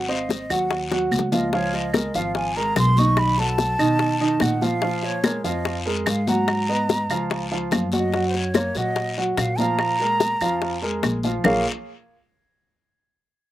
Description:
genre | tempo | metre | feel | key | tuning
Afro-Cuban jazz | 145 BPM | 4/4 | straight | Bb minor | A4 = 439 Hz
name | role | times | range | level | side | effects
breathy hollow jazz flute | melody | 0.0-11.0 s | C5 to Db6 | -25 LUFS | right 1 dB | none
upright bass | bass | 0.0-11.6 s | Ab1 to B2 | -26 LUFS | equal | none
warm upright piano | accompaniment | 0.1-11.6 s | Eb3 to Gb5 | -24 LUFS | right 2 dB | slapback echo
bongos | percussion | 0.1-11.5 s | none | -25 LUFS | left 7 dB | none
congas | percussion | 0.1-11.5 s | none | -28 LUFS | left 2 dB | none
guiro | percussion | 0.3-11.5 s | none | -33 LUFS | left 5 dB | none
claves | percussion | 0.5-11.5 s | none | -29 LUFS | right 2 dB | none
room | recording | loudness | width
little or no reverb | recorded outdoors, with no room sound | -19 LUFS | side -14 dB against mid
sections
0.0-8.1 A section; 8.1-11.4 B section; 11.4-13.1 C section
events
drum fill 0.9-1.5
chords
0.0 Ab6; 1.5 Db6; 3.2 B7#11; 4.8 Bbm7; 6.5 Abm7; 7.3 Db; 8.1 Gbmaj7; 9.8 Bb5; 11.4 Bbm7

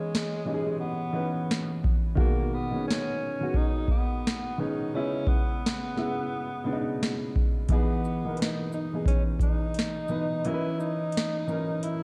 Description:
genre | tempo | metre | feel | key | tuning
lo-fi hip hop | 87 BPM | 4/4 | swing 61% on 16ths | unclear | A4 = 440 Hz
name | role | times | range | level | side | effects
breathy tenor saxophone | melody | 0.0-12.0 s | G#3 to E4 | -35 LUFS | equal | low-pass filter, delay
warm upright piano | accompaniment | 0.0-12.0 s | B2 to D#5 | -33 LUFS | equal | cassette tape, low-pass filter
booming analog drum machine | drums | 0.1-12.0 s | hi-hat, kick drum, shaker, snare drum | -29 LUFS | equal | overdrive
room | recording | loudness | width
wet plate reverb, RT60 1.9 s | dreamy mix soaked in reverb, cassette tape, faint mains hum | -28 LUFS | mono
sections
0.0-12.0 A section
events
break 0.0-7.7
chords
0.0 C#m7/E; 2.2 G#m7; 4.9 C#m7; 7.7 Emaj7; 10.4 C#m7/E

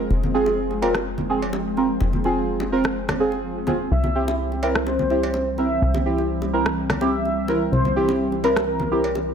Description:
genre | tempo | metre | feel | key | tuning
progressive house | 126 BPM | 4/4 | straight | F harmonic minor | A4 = 444 Hz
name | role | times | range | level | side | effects
shimmering ambient pad | sustained chords | 0.0-9.3 s | E3 to C4 | -27 LUFS | equal | chorus, built-in reverb
plucky analog bass | bass | 0.0-9.3 s | F1 to C2 | -27 LUFS | left 1 dB | none
bongos, congas and cowbell | percussion | 0.1-9.3 s | none | -30 LUFS | right 1 dB | none
deep mellow chord stab | stabs | 0.3-9.0 s | C4 to Bb4 | -23 LUFS | right 2 dB | chorus, phaser, dub echo
electronic rim click | drums | 0.9-8.7 s | none | -27 LUFS | equal | none
warm velvety synth lead | melody | 3.9-9.3 s | Bb4 to E5 | -26 LUFS | left 1 dB | chorus, dub echo
room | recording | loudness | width
light reverb, digital ambience | none | -19 LUFS | side -7 dB against mid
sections
0.0-9.3 A section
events
filter sweep on ambient pad 0.0-9.3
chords
0.0 Fm; 3.9 C

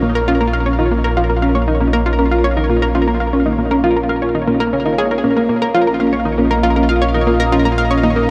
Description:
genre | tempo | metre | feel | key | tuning
ambient, sequencer-driven space music | 118 BPM | 4/4 | straight | Bb minor | A4 = 442 Hz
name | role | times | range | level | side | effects
sweeping resonant pad | sustained chords | 0.0-8.3 s | Bb3 to F5 | -26 LUFS | equal | chorus
mellow electric guitar | arpeggios | 0.0-8.1 s | Bb3 to Db5 | -20 LUFS | equal | delay
analog pluck | riff | 0.0-8.2 s | Bb3 to F5 | -19 LUFS | equal | chorus, delay
analog drone | bass | 0.0-8.3 s | Bb1 | -22 LUFS | equal | chorus
pulsing gated texture | texture | 0.0-8.3 s | none | barely audible | none | none
room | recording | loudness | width
wet huge ambient reverb, RT60 7.9 s | dreamy mix soaked in reverb | -15 LUFS | mono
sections
0.0-8.3 A section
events
fade-in on analog synth pad 0.0-8.3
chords
0.0 Bbm

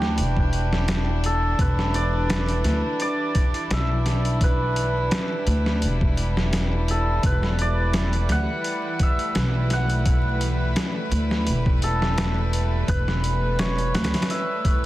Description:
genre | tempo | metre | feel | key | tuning
trip hop | 85 BPM | 4/4 | swing 54% on 16ths | E minor | A4 = 440 Hz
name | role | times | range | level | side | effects
hammered dulcimer | melody | 0.0-14.9 s | G4 to F#5 | -28 LUFS | right 1 dB | vintage 12-bit sampler grit, dub echo
clear studio violin section | sustained chords | 0.0-14.9 s | G3 to B4 | -31 LUFS | left 1 dB | vintage 12-bit sampler grit
upright bass | bass | 0.0-14.1 s | E1 to D2 | -23 LUFS | equal | none
trip hop sampler-style drum kit | drums | 0.0-14.8 s | hi-hat, kick drum, snare drum | -24 LUFS | equal | none
bowed-like drone | texture | 0.3-14.9 s | E3 to E4 | -35 LUFS | equal | built-in reverb
room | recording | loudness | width
little or no reverb | dense, heavily limited modern master, vinyl crackle | -20 LUFS | side -16 dB against mid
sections
0.0-14.9 A section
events
none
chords
0.0 Em9

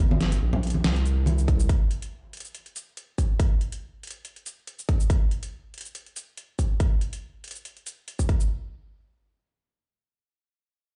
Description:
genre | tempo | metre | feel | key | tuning
deep dubstep | 141 BPM | 4/4 | swing 54% on 16ths, half-time | unclear | A4 = 442 Hz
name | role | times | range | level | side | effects
saturated sub bass | bass | 0.0-1.7 s | G1 to C2 | -26 LUFS | equal | none
congas | percussion | 0.1-1.4 s | none | -33 LUFS | equal | dub echo
dubstep drum kit | drums | 0.2-8.5 s | hi-hat, shaker, snare drum | -35 LUFS | equal | overdrive
electronic kick drum | drums | 1.5-8.4 s | none | -25 LUFS | equal | overdrive
room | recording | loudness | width
little or no reverb | played on a big sound system in a bare room, large studio reverb, nothing above 10.4 kHz | -25 LUFS | mono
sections
0.0-8.5 A section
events
none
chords
none

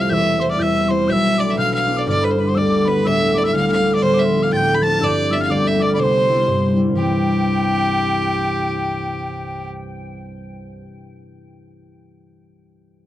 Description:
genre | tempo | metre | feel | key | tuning
celtic folk, Celtic polka | 123 BPM | 2/4 | swing 60% on 8ths | C major | A4 = 440 Hz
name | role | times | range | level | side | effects
clear fiddle | melody | 0.0-9.7 s | G4 to B5 | -21 LUFS | right 2 dB | none
mellow mid whistle | second line | 0.0-9.7 s | G5 to A6 | -25 LUFS | left 4 dB | tape echo
concert harp | accompaniment | 0.0-10.8 s | D1 to F4 | -18 LUFS | left 1 dB | none
room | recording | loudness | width
little or no reverb | dry, close 1970s-style studio recording | -15 LUFS | side -13 dB against mid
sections
0.0-7.0 A section; 7.0-8.9 B section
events
none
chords
0.1 C/E; 1.1 Dm69/B; 2.1 G; 4.0 Dm7; 5.0 G7; 6.0 C

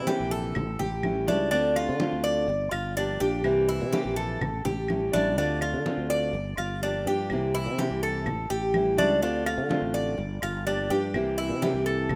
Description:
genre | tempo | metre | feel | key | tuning
latin, Cuban son and guajira | 125 BPM | 4/4 | straight | D minor | A4 = 440 Hz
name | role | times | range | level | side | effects
nylon-string guitar | accompaniment | 0.0-12.1 s | C3 to G4 | -33 LUFS | equal | none
Cuban tres | arpeggios | 0.0-12.2 s | D4 to D5 | -30 LUFS | equal | none
sustaining fretless electric bass | bass | 0.0-12.2 s | G1 to D3 | -34 LUFS | equal | lush chorus
congas | percussion | 0.1-12.2 s | none | -36 LUFS | equal | none
claves | percussion | 0.6-12.2 s | none | -40 LUFS | equal | none
room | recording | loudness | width
moderate lush hall reverb, RT60 2.6 s | rough home demo mix | -27 LUFS | mono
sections
0.0-12.2 A section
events
none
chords
0.0 C7; 0.6 A7; 1.5 Dm7; 2.5 Gm7; 3.5 C7; 4.4 A7; 5.4 Dm7; 6.3 Gm7; 7.3 C7; 8.3 A7; 9.2 Dm7; 10.2 Gm7; 11.1 C7

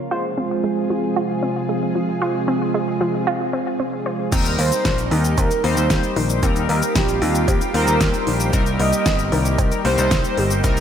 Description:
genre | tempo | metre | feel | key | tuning
synthwave | 114 BPM | 4/4 | straight | unclear | A4 = 440 Hz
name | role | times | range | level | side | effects
lush unison pad | sustained chords | 0.0-10.8 s | C3 to Ab4 | -24 LUFS | right 1 dB | chorus, sidechain pumping
analog pluck | arpeggios | 0.0-10.8 s | Eb3 to C5 | -26 LUFS | right 1 dB | chorus, ping-pong delay
chorused polysynth | stabs | 0.0-10.8 s | G3 to C5 | -26 LUFS | left 1 dB | tremolo, ping-pong delay
picked electric bass | bass | 4.3-10.8 s | G1 to Eb2 | -21 LUFS | equal | sidechain pumping
electronic kick drum | drums | 4.3-10.7 s | none | -22 LUFS | equal | none
pop drum kit | drums | 4.3-10.8 s | crash cymbal, hi-hat, shaker, snare drum | -25 LUFS | left 1 dB | none
warm velvety synth lead | melody | 4.6-10.6 s | F4 to Eb5 | -23 LUFS | right 1 dB | chorus, digital delay
room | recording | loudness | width
light reverb | low-pass filter | -17 LUFS | side -8 dB against mid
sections
0.0-4.3 A section; 4.3-10.8 B section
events
filter sweep on analog synth pad 0.0-4.3; filter sweep 0.0-4.3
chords
0.1 Fm; 4.3 Eb6; 8.5 Cm7

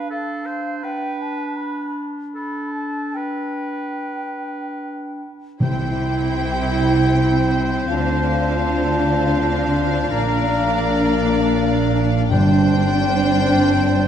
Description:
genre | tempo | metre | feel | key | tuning
cinematic, emotional film score for orchestra | 72-83 BPM | 3/4 | rubato | C major from 5.6 s | A4 = 435 Hz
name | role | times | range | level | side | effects
mellow clarinet | second line | 0.0-14.1 s | D4 to F4 | -27 LUFS | equal | none
mellow hollow silver concert flute | second line | 0.0-14.1 s | F5 to B5 | -28 LUFS | left 1 dB | none
warm oboe | second line | 0.0-14.1 s | A4 to C5 | -30 LUFS | right 2 dB | none
rich studio violin section | melody | 5.6-14.1 s | F5 to G5 | -27 LUFS | left 4 dB | none
rich studio violin section | second line | 5.6-14.1 s | C5 to D5 | -30 LUFS | left 2 dB | none
rich studio viola section | accompaniment | 5.6-14.1 s | D4 to E4 | -24 LUFS | right 1 dB | none
mellow French horn section | sustained chords | 5.6-14.1 s | Bb3 to F4 | -23 LUFS | left 3 dB | none
rich studio cello section | bass | 5.6-14.1 s | G2 to D3 | -24 LUFS | right 3 dB | none
rich studio double bass section | bass | 5.6-14.1 s | G1 to D2 | -23 LUFS | right 2 dB | none
timpani | percussion | 5.6-6.7, 12.3-13.4 s | G2 to C3 | -23 LUFS | left 2 dB | none
room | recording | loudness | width
wet scoring stage reverb, RT60 1.9 s | dark, warm production | -17 LUFS | side -9 dB against mid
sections
0.0-5.6 A section; 5.6-14.1 B section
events
none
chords
0.0 Dm7; 0.8 Gadd9/D; 5.6 C; 7.9 Dm7; 10.1 Bb; 12.3 Gsus4

